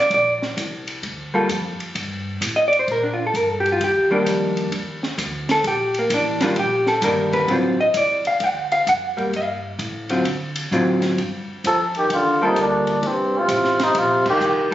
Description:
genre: jazz, small-group swing and bop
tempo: 130 BPM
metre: 4/4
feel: swing 67% on 8ths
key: G minor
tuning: A4 = 440 Hz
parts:
  - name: hollow-body jazz guitar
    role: accompaniment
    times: 0.0-14.7 s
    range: D3 to F#5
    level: -18 LUFS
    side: equal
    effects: none
  - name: upright bass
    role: bass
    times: 0.1-14.7 s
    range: G1 to D3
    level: -31 LUFS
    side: equal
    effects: none
  - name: compact cocktail drum kit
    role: drums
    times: 0.1-14.7 s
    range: crash cymbal, hi-hat, kick drum, ride cymbal, snare drum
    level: -29 LUFS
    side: equal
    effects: none
  - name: trumpet with cup mute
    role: melody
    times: 11.7-14.7 s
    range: C4 to A4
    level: -19 LUFS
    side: equal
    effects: none
  - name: trombone with bucket mute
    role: second line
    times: 11.7-14.7 s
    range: G2 to F3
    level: -22 LUFS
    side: right 1 dB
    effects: none
room: moderate large studio reverb, RT60 1.3 s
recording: recorded on a phone in the room, studio reverb, compression, nothing above 7.7 kHz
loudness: -18 LUFS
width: side -13 dB against mid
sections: 0.0-11.2 A section; 11.2-14.7 B section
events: band accent 14.2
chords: 0.0 Gm9; 3.8 Ebmaj7; 7.5 D7#9; 9.3 Gsus2; 10.3 D7#9; 11.2 Gm9; 13.0 Cm7

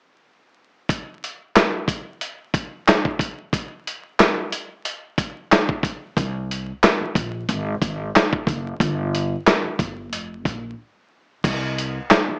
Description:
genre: hip hop, boom-bap hip-hop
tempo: 91 BPM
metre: 4/4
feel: swing 55% on 16ths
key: unclear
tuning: A4 = 440 Hz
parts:
  - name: dusty soul sampler-style drum kit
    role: drums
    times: 0.9-12.3 s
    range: crash cymbal, handclaps, hi-hat, kick drum, snare drum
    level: -21 LUFS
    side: equal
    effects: none
  - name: upright bass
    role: bass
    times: 6.2-12.3 s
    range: F1 to C2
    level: -28 LUFS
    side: equal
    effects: none
room: moderate studio reverb, RT60 0.5 s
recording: worn, warbling old tape, cassette tape, vinyl crackle, warbly pitch drift, small speaker sound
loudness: -22 LUFS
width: mono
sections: 0.9-11.4 A section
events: break 10.8-11.4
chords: none

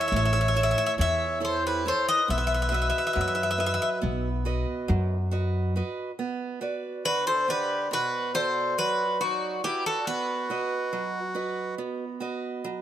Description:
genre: greek folk, Greek bouzouki band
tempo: 139 BPM (eighths)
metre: 9/8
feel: straight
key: unclear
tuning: A4 = 440 Hz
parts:
  - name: Greek bouzouki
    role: melody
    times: 0.0-11.7 s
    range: F#4 to E5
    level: -26 LUFS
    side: left 2 dB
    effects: none
  - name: accordion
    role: second line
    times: 0.0-11.7 s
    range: D#4 to C#5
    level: -31 LUFS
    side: right 1 dB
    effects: none
  - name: picked steel-string acoustic guitar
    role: accompaniment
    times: 0.0-12.8 s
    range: B2 to F#5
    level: -32 LUFS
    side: right 4 dB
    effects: none
  - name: upright bass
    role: bass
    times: 0.1-5.8 s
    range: A1 to F#2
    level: -27 LUFS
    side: equal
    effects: none
room: light reverb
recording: none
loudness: -24 LUFS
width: side -11 dB against mid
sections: 0.0-6.2 A section; 6.2-12.8 B section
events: none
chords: 0.0 A; 2.3 B; 6.2 Bm; 10.1 B

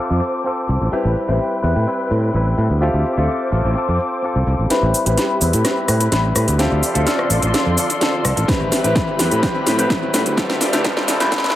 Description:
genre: filtered disco house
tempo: 127 BPM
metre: 4/4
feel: straight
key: A minor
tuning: A4 = 441 Hz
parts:
  - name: bright concert grand piano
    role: accompaniment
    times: 0.0-11.5 s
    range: C4 to E5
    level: -23 LUFS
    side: left 1 dB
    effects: phaser, sidechain pumping, low-pass filter, tape echo
  - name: muted studio string section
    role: sustained chords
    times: 0.0-11.6 s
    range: F3 to D6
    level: -25 LUFS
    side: left 1 dB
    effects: vintage 12-bit sampler grit, sidechain pumping, low-pass filter
  - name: direct-recorded clean electric guitar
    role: riff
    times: 0.0-11.6 s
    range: G3 to B4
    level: -23 LUFS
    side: left 2 dB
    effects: warbly pitch drift, sidechain pumping, low-pass filter, tape echo
  - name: modern bright fingered electric bass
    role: bass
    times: 0.1-11.5 s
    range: A1 to A2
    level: -18 LUFS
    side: equal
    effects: tube saturation, sidechain pumping, low-pass filter
  - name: egg shaker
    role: percussion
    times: 0.1-4.7 s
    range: none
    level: -64 LUFS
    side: left 1 dB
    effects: none
  - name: house drum kit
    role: drums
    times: 4.7-11.6 s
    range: hi-hat, rim click, shaker, snare drum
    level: -20 LUFS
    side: equal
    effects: overdrive, sidechain pumping on hats, sidechain pumping on perc, tape echo
  - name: riser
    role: sound effects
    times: 5.8-11.6 s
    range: none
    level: -30 LUFS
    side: equal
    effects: none
  - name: electronic kick drum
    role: drums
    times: 8.5-11.4 s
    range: none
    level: -22 LUFS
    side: equal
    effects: overdrive
room: moderate spring reverb, RT60 1.6 s, digital ambience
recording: echo-heavy mix, high-pass filter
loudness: -15 LUFS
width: side -13 dB against mid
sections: 0.0-4.7 A section; 4.7-11.6 B section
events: filter sweep 0.0-4.7, 4.7-11.6; build-up 4.7-11.6; drum fill 4.7-11.6; riser 5.8-11.6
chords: 0.0 Dm7; 0.9 Am9; 2.8 Dm7; 4.7 Am9; 6.6 Dm7; 8.5 Am9; 10.4 Dm7

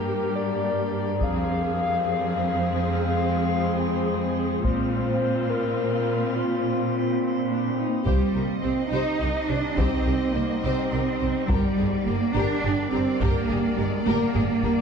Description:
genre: cinematic, hybrid orchestral and electronic film score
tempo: 70 BPM (dotted quarters)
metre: 6/8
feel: straight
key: C minor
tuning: A4 = 440 Hz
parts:
  - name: pure sine lead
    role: melody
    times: 0.0-7.8 s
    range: F4 to F5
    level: -28 LUFS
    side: left 4 dB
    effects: chorus, digital delay
  - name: warm symphonic viola section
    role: accompaniment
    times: 0.0-14.7 s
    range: Bb3 to Ab4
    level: -32 LUFS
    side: left 1 dB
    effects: none
  - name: metallic inharmonic drone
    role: sustained chords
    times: 0.0-14.8 s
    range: G3 to C5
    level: -28 LUFS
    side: left 2 dB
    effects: chorus, built-in reverb
  - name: rich symphonic cello section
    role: bass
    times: 0.0-14.8 s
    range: F2 to Eb4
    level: -26 LUFS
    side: right 3 dB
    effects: none
  - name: taiko ensemble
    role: drums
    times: 1.2-14.8 s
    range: none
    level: -28 LUFS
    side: equal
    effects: none
  - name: warm symphonic violin section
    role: melody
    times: 8.1-14.8 s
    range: D5 to Eb5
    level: -36 LUFS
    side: left 4 dB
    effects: none
  - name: warm symphonic violin section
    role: second line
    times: 8.1-14.7 s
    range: Ab4 to C5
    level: -34 LUFS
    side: left 5 dB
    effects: none
  - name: warm symphonic double bass section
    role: bass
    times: 8.1-14.7 s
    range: G1 to C2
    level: -29 LUFS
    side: right 3 dB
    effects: none
room: moderate concert hall reverb, RT60 1.8 s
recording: dark, warm production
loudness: -22 LUFS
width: side -6 dB against mid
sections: 0.0-8.1 A section; 8.1-14.8 B section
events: drum fill 14.1-14.8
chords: 0.0 Gm; 1.2 Fm; 4.6 Bbsus2; 8.1 Cm; 11.5 Gm

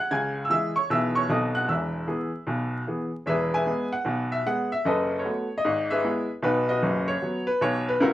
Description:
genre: jazz, stride piano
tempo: 152 BPM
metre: 4/4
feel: swing 65% on 8ths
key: E major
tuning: A4 = 440 Hz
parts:
  - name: clear upright piano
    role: solo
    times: 0.0-8.1 s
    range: E1 to G#6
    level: -23 LUFS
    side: equal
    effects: none
room: wet studio reverb, RT60 0.6 s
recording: band playing live in one room, vinyl crackle, faint mains hum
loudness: -23 LUFS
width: side -14 dB against mid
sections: 0.0-3.3 A section; 3.3-8.1 B section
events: none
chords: 0.1 C#m; 0.9 E/B; 1.3 B7b9; 1.7 E; 4.9 B5/F#; 5.6 E/G#; 6.4 B

